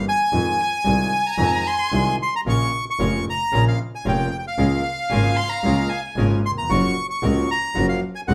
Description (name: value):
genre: tango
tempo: 113 BPM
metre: 4/4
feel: rubato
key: F minor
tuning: A4 = 440 Hz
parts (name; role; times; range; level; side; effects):
- bandoneon; melody; 0.0-8.3 s; F5 to Db6; -25 LUFS; equal; none
- warm concert grand piano; accompaniment; 0.0-8.3 s; F1 to Gb4; -28 LUFS; equal; none
- clear double bass; bass; 0.0-8.3 s; F1 to F2; -24 LUFS; equal; none
- warm violin; second line; 0.6-6.3 s; Ab5 to C6; -29 LUFS; equal; none
- bandoneon; stabs; 2.5-8.3 s; Db4 to Bb4; -34 LUFS; equal; none
room: moderate studio reverb, RT60 0.7 s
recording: band playing live in one room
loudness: -21 LUFS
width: mono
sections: 0.0-8.3 A section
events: none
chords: 0.3 Fm7; 2.5 Bbm; 4.6 Db6; 6.7 Gbmaj7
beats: | 0.33 0.86 1.39 1.92 | 2.46 2.99 3.52 4.05 | 4.58 5.11 5.64 6.17 | 6.70 7.22 7.75 8.28